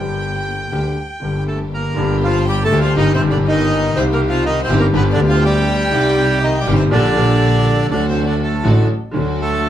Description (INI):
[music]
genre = tango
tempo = 121 BPM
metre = 4/4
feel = rubato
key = G minor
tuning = A4 = 440 Hz
[part]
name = bandoneon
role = melody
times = 0.0-9.7 s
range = C3 to G5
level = -19 LUFS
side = equal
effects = none
[part]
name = warm violin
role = second line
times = 0.0-9.7 s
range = A4 to A5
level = -28 LUFS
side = left 3 dB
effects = none
[part]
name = clear concert grand piano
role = accompaniment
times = 0.0-9.7 s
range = G1 to G4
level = -18 LUFS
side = left 2 dB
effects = none
[part]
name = warm symphonic string section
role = stabs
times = 0.0-9.7 s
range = A3 to G4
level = -28 LUFS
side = equal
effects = none
[part]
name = clear double bass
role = bass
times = 0.0-9.7 s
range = G1 to D2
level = -19 LUFS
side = right 1 dB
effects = none
[sound]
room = wet studio reverb, RT60 0.5 s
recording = heard from further back in the room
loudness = -14 LUFS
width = side -11 dB against mid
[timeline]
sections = 0.0-2.0 A section; 2.0-9.7 B section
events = none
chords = 0.0 Gm; 3.0 Eb/G; 4.0 Cm; 4.9 G; 5.9 Cm; 6.9 Gm/Bb; 7.9 D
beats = 0.47 0.97 1.47 | 1.97 2.47 2.97 3.46 | 3.96 4.45 4.95 5.44 | 5.93 6.42 6.92 7.41 | 7.90 8.40 8.89 9.39